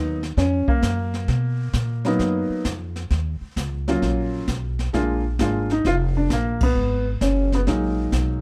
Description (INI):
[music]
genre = jazz piano trio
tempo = 132 BPM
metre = 4/4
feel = swing 68% on 8ths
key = unclear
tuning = A4 = 440 Hz
[part]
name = warm baby grand piano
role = melody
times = 0.0-8.4 s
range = Gb3 to F4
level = -25 LUFS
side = equal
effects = plate reverb
[part]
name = upright bass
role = bass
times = 0.0-8.4 s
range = F1 to Cb3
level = -26 LUFS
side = equal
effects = none
[part]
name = jazz brush drum kit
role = drums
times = 0.2-8.4 s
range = brushed snare drum, crash cymbal, hi-hat, kick drum, snare drum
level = -29 LUFS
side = equal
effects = none
[sound]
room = light reverb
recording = dark, warm production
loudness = -22 LUFS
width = mono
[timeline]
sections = 0.0-8.4 A section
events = band accent 6.5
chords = 0.0 Abm9 (rootless); 3.1 Ebm9; 4.9 Bb7; 6.8 Abm9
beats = 0.38 0.83 | 1.29 1.74 2.20 2.66 | 3.11 3.57 4.02 4.48 | 4.93 5.39 5.85 6.30 | 6.76 7.21 7.67 8.12